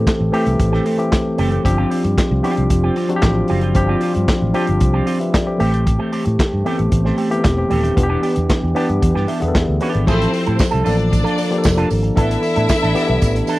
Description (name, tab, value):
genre	disco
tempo	114 BPM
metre	4/4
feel	straight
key	A minor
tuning	A4 = 443 Hz
part	tine electric piano	accompaniment	0.0-13.6 s	E3 to E5	-19 LUFS	left 2 dB	none
part	dark French horn section	sustained chords	0.0-13.6 s	E3 to A4	-25 LUFS	right 2 dB	none
part	fingered electric bass	bass	0.0-13.4 s	D#1 to A2	-18 LUFS	equal	none
part	vintage drum kit	drums	0.1-13.6 s	crash cymbal, handclaps, hi-hat, kick drum, snare drum	-19 LUFS	equal	none
part	electric guitar with an envelope filter	accompaniment	0.2-13.6 s	A3 to A4	-23 LUFS	right 5 dB	analog chorus
part	clear studio string section	second line	10.1-13.6 s	C4 to E5	-23 LUFS	left 3 dB	none
part	tambourine	percussion	10.1-13.6 s	none	-35 LUFS	right 14 dB	none
room	little or no reverb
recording	dry, close 1970s-style studio recording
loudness	-14 LUFS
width	side -18 dB against mid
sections	0.0-10.1 A section; 10.1-13.6 B section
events	tine electric piano fill 9.0-10.1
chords	0.0 Am7; 1.6 G7sus4; 5.6 Am7; 8.0 Em7; 10.1 Fmaj7/A; 10.9 Bbmaj7/A; 12.2 E7sus4/A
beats	0.07 0.60 1.12 | 1.65 2.18 2.71 3.23 | 3.76 4.29 4.81 5.34 | 5.86 6.39 6.92 7.44 | 7.97 8.49 9.02 9.54 | 10.07 10.60 11.12 11.64 | 12.17 12.69 13.22